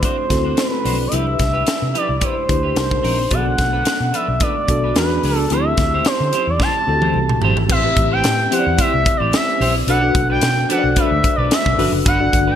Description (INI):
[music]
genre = polished 1980s jazz-funk pop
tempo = 110 BPM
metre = 4/4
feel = swing 54% on 16ths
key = A dorian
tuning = A4 = 440 Hz
[part]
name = expressive portamento lead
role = melody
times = 0.0-12.6 s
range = B4 to A5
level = -20 LUFS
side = equal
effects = chorus
[part]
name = mellow tine electric piano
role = accompaniment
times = 0.0-12.6 s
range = B3 to D5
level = -22 LUFS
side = left 3 dB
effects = medium stereo tremolo, lush chorus
[part]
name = clean electric guitar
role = riff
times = 0.0-12.6 s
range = C4 to C5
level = -26 LUFS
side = right 3 dB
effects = wide subtle chorus
[part]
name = crisp fusion drum kit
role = drums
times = 0.0-12.5 s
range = crash cymbal, hi-hat, kick drum, snare drum, toms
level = -20 LUFS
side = equal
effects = gated reverb
[part]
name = congas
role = percussion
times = 0.0-12.5 s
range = none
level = -33 LUFS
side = right 2 dB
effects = none
[part]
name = vintage muted fingered electric bass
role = bass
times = 0.3-12.6 s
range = F#1 to D3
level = -21 LUFS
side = equal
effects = none
[sound]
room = light reverb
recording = bright 1980s-style digital production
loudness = -15 LUFS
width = side -9 dB against mid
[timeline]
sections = 0.0-7.7 A section; 7.7-12.6 B section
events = drum fill 6.6-7.7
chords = 0.0 D7; 1.1 Cmaj7; 2.8 Cm7; 3.3 Bm7; 5.0 E7; 5.5 D9sus4; 7.7 Am7; 9.9 Bm7; 11.8 Gmaj7